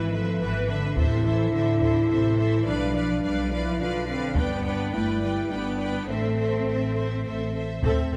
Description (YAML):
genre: cinematic, epic orchestral film score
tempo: 106 BPM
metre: 3/4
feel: straight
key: A minor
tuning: A4 = 441 Hz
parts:
  - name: rich symphonic violin section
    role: melody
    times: 0.0-8.2 s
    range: E5 to G5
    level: -40 LUFS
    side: equal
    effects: none
  - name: clear symphonic violin section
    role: second line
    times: 0.0-7.8 s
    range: B4 to D5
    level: -39 LUFS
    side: equal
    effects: none
  - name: clear symphonic viola section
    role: accompaniment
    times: 0.0-8.2 s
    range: C4 to B4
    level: -36 LUFS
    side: equal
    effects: none
  - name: warm French horn section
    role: sustained chords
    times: 0.0-8.2 s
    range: A3 to F4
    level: -30 LUFS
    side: equal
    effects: none
  - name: rich symphonic cello section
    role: bass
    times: 0.0-8.2 s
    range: A2 to C4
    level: -33 LUFS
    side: equal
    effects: none
  - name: rich symphonic double bass section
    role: bass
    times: 0.0-8.2 s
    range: G1 to B1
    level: -31 LUFS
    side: equal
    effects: none
  - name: taiko ensemble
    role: drums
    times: 1.0-8.2 s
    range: none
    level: -31 LUFS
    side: equal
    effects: none
room: wet concert hall reverb, RT60 2.4 s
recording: none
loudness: -25 LUFS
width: mono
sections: 0.0-7.8 A section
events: none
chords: 0.0 E/G#; 1.0 Am; 2.7 Bdim; 4.4 G; 6.1 Am